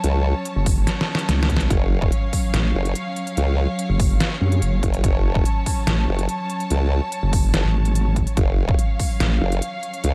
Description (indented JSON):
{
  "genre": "heavy wobble dubstep",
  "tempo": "144 BPM",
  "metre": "4/4",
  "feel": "half-time",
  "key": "F# harmonic minor",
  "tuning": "A4 = 440 Hz",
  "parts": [
    { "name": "warm studio string section", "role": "sustained chords", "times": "0.0-10.1 s", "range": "F#3 to A5", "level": "-30 LUFS", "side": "equal", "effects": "sidechain pumping" },
    { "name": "formant-sweep wobble bass", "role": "bass", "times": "0.0-10.1 s", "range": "F#1 to C#2", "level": "-22 LUFS", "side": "equal", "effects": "chorus, overdrive" },
    { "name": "dubstep drum kit", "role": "drums", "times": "0.0-10.1 s", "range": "hi-hat, snare drum", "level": "-28 LUFS", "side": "equal", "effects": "studio reverb" },
    { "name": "vowel-sweep wobble bass", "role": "bass", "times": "0.6-9.4 s", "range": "F#1 to F#2", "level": "-22 LUFS", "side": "equal", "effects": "chorus, overdrive" },
    { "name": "electronic kick drum", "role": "drums", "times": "0.7-9.1 s", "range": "none", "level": "-23 LUFS", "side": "equal", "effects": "studio reverb" }
  ],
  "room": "digital ambience",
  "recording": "dark, warm production",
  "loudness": "-21 LUFS",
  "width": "mono",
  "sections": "0.0-10.1 A section",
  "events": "drum fill 0.9-1.7",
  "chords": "0.0 F#5"
}